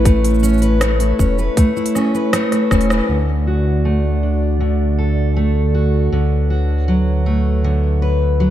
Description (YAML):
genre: folktronica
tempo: 79 BPM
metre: 4/4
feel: straight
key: D major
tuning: A4 = 440 Hz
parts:
  - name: warbly tape-like pad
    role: sustained chords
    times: 0.0-8.5 s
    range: D3 to D5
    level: -23 LUFS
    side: right 3 dB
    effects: chorus, built-in reverb
  - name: fingerpicked steel-string acoustic guitar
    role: arpeggios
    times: 0.0-8.5 s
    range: D3 to B4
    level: -18 LUFS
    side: equal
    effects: low-pass filter, ping-pong delay
  - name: warm sub bass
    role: bass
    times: 0.0-8.5 s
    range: E1 to D2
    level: -17 LUFS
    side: equal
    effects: none
  - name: electronic kick drum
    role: drums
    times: 0.1-2.9 s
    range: none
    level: -16 LUFS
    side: equal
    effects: none
  - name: organic electronic drum kit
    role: drums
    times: 0.1-3.1 s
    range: hi-hat, rim click, shaker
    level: -23 LUFS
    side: equal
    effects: low-pass filter on hats, low-pass filter on perc, low-pass filter on snare, low-pass filter on room
room: light reverb, digital ambience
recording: dark, warm production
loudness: -14 LUFS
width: side -12 dB against mid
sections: 0.0-3.1 A section; 3.1-8.5 B section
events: drum fill 2.5-3.1; band accent 2.9-3.3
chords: 0.0 Aadd9; 3.1 D; 6.1 Bm7/D